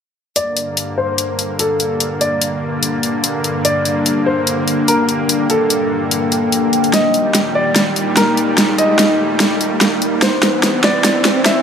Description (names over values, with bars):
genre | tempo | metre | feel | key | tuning
heavy wobble dubstep | 146 BPM | 4/4 | swing 54% on 16ths, half-time | G minor | A4 = 441 Hz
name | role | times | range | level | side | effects
dark grand piano | melody | 0.4-11.6 s | A4 to E5 | -19 LUFS | equal | low-pass filter, tape echo
supersaw pad | sustained chords | 0.4-11.6 s | C2 to Bb3 | -21 LUFS | equal | none
dubstep drum kit | drums | 0.4-11.5 s | hi-hat, snare drum | -16 LUFS | equal | studio reverb
riser | sound effects | 4.4-11.6 s | none | -24 LUFS | equal | none
deep dark ambient pad | texture | 2.6-11.6 s | Bb3 to G5 | -20 LUFS | left 1 dB | chorus, built-in reverb
room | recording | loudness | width
moderate lush hall reverb, RT60 2.1 s | high-pass filter | -13 LUFS | side -7 dB against mid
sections
0.4-11.6 A section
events
build-up 0.4-11.6; filter sweep on grand piano 0.4-11.6; riser 4.4-11.6; drum fill 6.9-11.6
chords
0.4 Gm; 6.9 Eb; 10.2 C